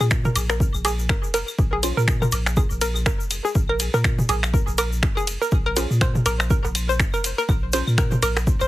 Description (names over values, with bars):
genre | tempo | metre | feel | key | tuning
minimal techno | 122 BPM | 4/4 | swing 57% on 16ths | Bb minor | A4 = 440 Hz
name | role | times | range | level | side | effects
hollow square pluck | riff | 0.0-8.7 s | Ab4 to C5 | -26 LUFS | equal | chorus, sidechain pumping, tape echo
punchy sub bass | bass | 0.0-8.7 s | F1 to Bb2 | -24 LUFS | equal | sidechain pumping
egg shaker | percussion | 0.0-8.7 s | none | -34 LUFS | left 4 dB | none
electronic claves, toms, woodblock and cowbell | percussion | 0.0-8.7 s | none | -28 LUFS | right 1 dB | tape echo
electronic kick drum | drums | 0.1-8.6 s | none | -22 LUFS | equal | none
garage drum kit | drums | 0.1-8.4 s | finger snaps, hi-hat, ride cymbal | -26 LUFS | equal | none
filtered dub chord stab | stabs | 1.8-2.0, 5.8-7.8 s | Db4 to C5 | -32 LUFS | equal | phaser, wide subtle chorus, tape echo
room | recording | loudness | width
little or no reverb | heavily compressed radio sound, multiband compression | -19 LUFS | side -16 dB against mid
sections
0.0-8.7 A section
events
none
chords
0.0 Bb7(no3)